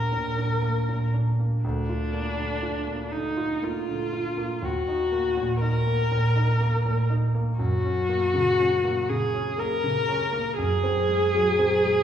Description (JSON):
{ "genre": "classical, romantic duo for viola and grand piano", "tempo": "60 BPM", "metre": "3/4", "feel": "rubato", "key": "Eb minor, F# major from 7.6 s", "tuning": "A4 = 437 Hz", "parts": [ { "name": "warm viola", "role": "melody", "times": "0.0-12.0 s", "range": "D4 to Bb4", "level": "-25 LUFS", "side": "left 1 dB", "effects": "none" }, { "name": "clear grand piano", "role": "accompaniment", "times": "0.0-12.0 s", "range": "D2 to F4", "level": "-25 LUFS", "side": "right 1 dB", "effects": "none" } ], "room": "wet recital hall reverb, RT60 1.6 s", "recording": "heard from further back in the room, small room ambience", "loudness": "-22 LUFS", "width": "side -9 dB against mid", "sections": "0.0-12.0 A section", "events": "none", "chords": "0.0 Bb/Eb; 1.6 Bb/D; 4.6 Ebm; 7.6 F#; 10.6 G#7/F#" }